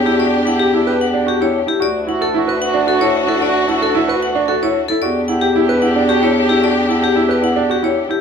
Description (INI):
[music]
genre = classical, minimalist pattern music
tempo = 112 BPM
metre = 3/4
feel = straight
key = unclear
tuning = A4 = 440 Hz
[part]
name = mellow soprano saxophone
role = second line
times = 0.0-8.0 s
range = F#4 to G4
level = -23 LUFS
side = right 4 dB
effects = none
[part]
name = clear studio string section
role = sustained chords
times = 0.0-8.1 s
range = D4 to G4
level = -22 LUFS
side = left 2 dB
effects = none
[part]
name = warm bass clarinet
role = bass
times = 0.0-8.1 s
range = D2 to E2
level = -20 LUFS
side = left 1 dB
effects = none
[part]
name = vibraphone with hard mallets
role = melody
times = 0.1-8.2 s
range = G4 to F#5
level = -19 LUFS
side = left 7 dB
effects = none
[part]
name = bright baby grand piano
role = arpeggios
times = 0.1-8.2 s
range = D4 to B4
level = -19 LUFS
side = right 6 dB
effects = none
[sound]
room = moderate large studio reverb, RT60 1.5 s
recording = dark, warm production, faint mains hum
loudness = -13 LUFS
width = side -6 dB against mid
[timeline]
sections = 0.0-8.2 A section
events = none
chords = 0.0 Em9; 1.8 Dadd9; 5.0 Em9